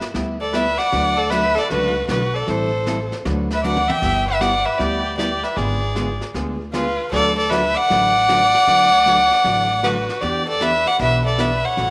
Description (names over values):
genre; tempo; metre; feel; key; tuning
country, western swing; 155 BPM; 4/4; swing 66% on 8ths; D major; A4 = 437 Hz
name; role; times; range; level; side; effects
clear erhu; second line; 0.0-11.9 s; E#4 to E5; -26 LUFS; equal; none
jazz brush drum kit; drums; 0.0-11.9 s; brushed snare drum, crash cymbal, hi-hat, kick drum, snare drum, toms; -34 LUFS; equal; none
hollow-body jazz guitar; accompaniment; 0.1-11.9 s; C#3 to B4; -28 LUFS; equal; none
upright bass; bass; 0.1-11.9 s; G1 to E2; -29 LUFS; equal; none
warm fiddle; melody; 0.4-11.9 s; B4 to G5; -21 LUFS; equal; none
room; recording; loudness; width
moderate plate reverb, RT60 2.2 s; none; -19 LUFS; mono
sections
0.0-11.9 A section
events
drum fill 3.6-4.0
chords
0.0 G6; 0.9 D6; 2.5 Am7; 3.2 D6; 4.0 G6; 5.6 G#dim7; 7.1 D6; 10.2 Em7